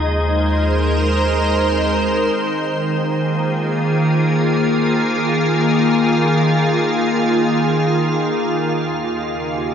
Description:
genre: ambient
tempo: free time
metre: none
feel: none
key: unclear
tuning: A4 = 440 Hz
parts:
  - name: soft additive organ-like pad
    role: sustained chords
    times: 0.0-9.7 s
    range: Eb2 to C5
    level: -16 LUFS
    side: equal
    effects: ensemble chorus, built-in reverb
  - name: warm sub bass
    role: bass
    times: 0.0-2.3 s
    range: Eb2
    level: -20 LUFS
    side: equal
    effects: none
  - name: organ-like drone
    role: drone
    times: 0.0-9.7 s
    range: Eb3 to Bb3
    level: -30 LUFS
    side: right 2 dB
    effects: none
  - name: bell-like tine electric piano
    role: arpeggios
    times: 1.7-3.1 s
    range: none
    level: barely audible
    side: none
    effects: none
room: wet lush hall reverb, RT60 3.1 s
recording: dreamy mix soaked in reverb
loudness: -15 LUFS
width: side -8 dB against mid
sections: 0.0-2.3 A section; 2.3-9.7 A section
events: none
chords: 0.0 Ebsus24; 8.7 Db/Eb

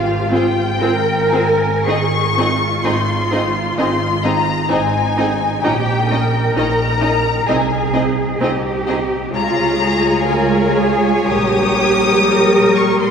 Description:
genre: classical, slow romantic movement for string orchestra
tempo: 54-66 BPM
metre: 4/4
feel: rubato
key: unclear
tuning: A4 = 437 Hz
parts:
  - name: warm symphonic violin section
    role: melody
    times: 0.0-13.1 s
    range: F5 to Eb6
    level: -20 LUFS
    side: left 4 dB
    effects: none
  - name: warm symphonic cello section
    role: bass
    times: 0.0-13.1 s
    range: Eb4 to Bb4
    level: -20 LUFS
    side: right 1 dB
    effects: none
  - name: warm symphonic double bass section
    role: bass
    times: 0.0-13.1 s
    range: Ab1 to Db2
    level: -21 LUFS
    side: right 3 dB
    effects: none
  - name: warm symphonic violin section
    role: second line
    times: 0.3-13.1 s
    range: Eb4 to Eb5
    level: -23 LUFS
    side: left 3 dB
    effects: none
  - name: rich symphonic viola section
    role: accompaniment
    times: 0.3-13.1 s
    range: G3 to G4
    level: -19 LUFS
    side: right 1 dB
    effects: none
room: wet cathedral reverb, RT60 4.6 s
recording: recorded in a church or concert hall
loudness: -14 LUFS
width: side -7 dB against mid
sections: 0.0-13.1 A section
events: none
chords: 0.0 Fm/Ab; 1.9 Ab; 5.6 Eb7/Bb; 7.5 Ab/C; 9.3 Db; 11.3 Gdim/Bb

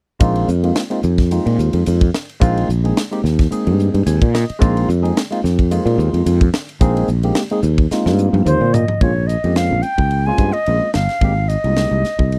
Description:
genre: electric jazz fusion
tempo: 109 BPM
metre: 4/4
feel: swing 54% on 16ths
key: Bb dorian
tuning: A4 = 440 Hz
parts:
  - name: barky tine electric piano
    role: accompaniment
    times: 0.2-12.3 s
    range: Ab3 to Ab5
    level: -23 LUFS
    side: equal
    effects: overdrive, phaser
  - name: sustaining fretless electric bass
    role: bass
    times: 0.2-12.4 s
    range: G1 to Bb2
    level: -18 LUFS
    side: equal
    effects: none
  - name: crisp fusion drum kit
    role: drums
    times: 0.2-12.4 s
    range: hi-hat, kick drum, ride cymbal, snare drum, toms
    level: -20 LUFS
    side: equal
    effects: none
  - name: reedy concert flute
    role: melody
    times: 8.5-12.4 s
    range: C5 to Ab5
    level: -22 LUFS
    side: equal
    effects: none
room: little or no reverb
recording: dry, close 1970s-style studio recording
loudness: -16 LUFS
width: mono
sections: 0.2-9.0 A section; 9.0-12.4 B section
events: tine electric piano fill 3.8-4.6; drum fill 7.9-9.0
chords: 0.2 Bb9sus4; 9.0 Bbm9; 11.2 Abmaj7

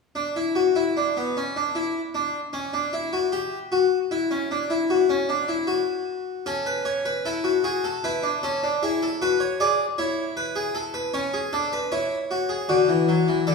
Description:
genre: classical, baroque-style 3-part fugue for harpsichord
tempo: 77 BPM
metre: 4/4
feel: straight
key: unclear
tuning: A4 = 440 Hz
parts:
  - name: harpsichord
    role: solo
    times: 0.2-13.5 s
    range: D3 to D5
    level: -22 LUFS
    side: left 2 dB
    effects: none
room: wet recital hall reverb, RT60 1.5 s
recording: heard from further back in the room, small room ambience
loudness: -22 LUFS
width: side -4 dB against mid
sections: 0.2-13.5 A section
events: none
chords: 0.2 N.C.; 6.5 A/C#; 8.0 E; 9.6 E7; 11.2 A/C#; 12.7 D

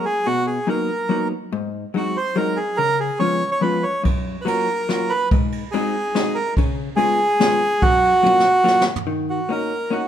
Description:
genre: musette waltz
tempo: 143 BPM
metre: 3/4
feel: straight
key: F# major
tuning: A4 = 440 Hz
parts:
  - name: bandoneon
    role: melody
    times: 0.0-10.1 s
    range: F#4 to C#5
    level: -19 LUFS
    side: right 2 dB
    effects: none
  - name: vintage hollow-body jazz guitar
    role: accompaniment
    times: 0.0-10.1 s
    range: F#2 to G#4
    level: -23 LUFS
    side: left 3 dB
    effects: none
  - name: jazz brush drum kit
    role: drums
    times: 4.0-9.1 s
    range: kick drum, ride cymbal, snare drum, toms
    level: -23 LUFS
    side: equal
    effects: none
room: light reverb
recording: minimal, uncompressed stereo recording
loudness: -17 LUFS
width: side -10 dB against mid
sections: 0.0-9.1 A section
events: drum fill 8.2-9.1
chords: 0.3 Bmaj7; 1.5 G#7; 2.8 C#7; 4.0 F#maj7; 5.3 G#7; 6.6 C#7; 7.8 F#maj7; 9.1 Ebm7

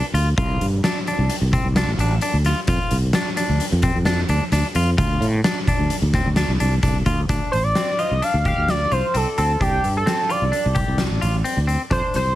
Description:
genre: progressive instrumental, band music in an uneven meter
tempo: 130 BPM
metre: 5/4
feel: straight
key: unclear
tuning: A4 = 438 Hz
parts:
  - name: clean electric guitar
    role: arpeggios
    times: 0.0-12.2 s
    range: C4 to G4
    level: -26 LUFS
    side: left 2 dB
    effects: none
  - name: sustaining fretless electric bass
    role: bass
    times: 0.1-12.3 s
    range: A1 to A2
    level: -20 LUFS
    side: equal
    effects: none
  - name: oversized low-tuned drum kit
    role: drums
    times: 0.1-12.2 s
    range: hi-hat, kick drum, snare drum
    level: -23 LUFS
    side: equal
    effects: none
  - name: sync lead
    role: melody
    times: 7.5-12.4 s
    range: G4 to F5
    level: -22 LUFS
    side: equal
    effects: chorus, ping-pong delay
room: light reverb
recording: heavily compressed radio sound, multiband compression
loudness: -18 LUFS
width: side -14 dB against mid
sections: 0.0-7.3 A section; 7.3-12.4 B section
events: none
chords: 0.0 Dm7; 2.7 F5; 7.3 Dm7

